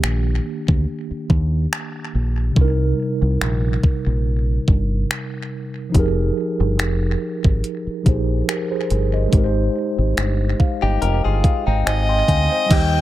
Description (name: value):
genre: contemporary R&B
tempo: 71 BPM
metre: 4/4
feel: swing 54% on 16ths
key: unclear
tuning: A4 = 442 Hz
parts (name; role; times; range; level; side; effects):
- mellow tine electric piano; accompaniment; 0.0-13.0 s; C3 to C6; -23 LUFS; right 1 dB; medium stereo tremolo
- deep dub fingered electric bass; bass; 0.0-13.0 s; F1 to Eb2; -19 LUFS; equal; none
- clean 12-bit digital drum machine; drums; 0.0-12.9 s; crash cymbal, finger snaps, hi-hat, kick drum; -18 LUFS; equal; none
- direct-recorded clean electric guitar; arpeggios; 10.8-12.7 s; C4 to Bb4; -26 LUFS; left 9 dB; tape echo
- clear fiddle; melody; 11.9-13.0 s; Eb5 to G5; -20 LUFS; left 2 dB; tape echo
room: digital ambience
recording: echo-heavy mix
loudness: -17 LUFS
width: side -14 dB against mid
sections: 0.0-12.7 A section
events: tine electric piano fill 10.2-12.7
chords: 0.0 Ebmaj7; 2.6 Cm7; 5.9 Fm11; 9.3 Abmaj7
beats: 0.03 0.88 1.72 | 2.56 3.41 4.25 5.10 | 5.95 6.79 7.64 8.48 | 9.33 10.17 11.02 11.86 | 12.71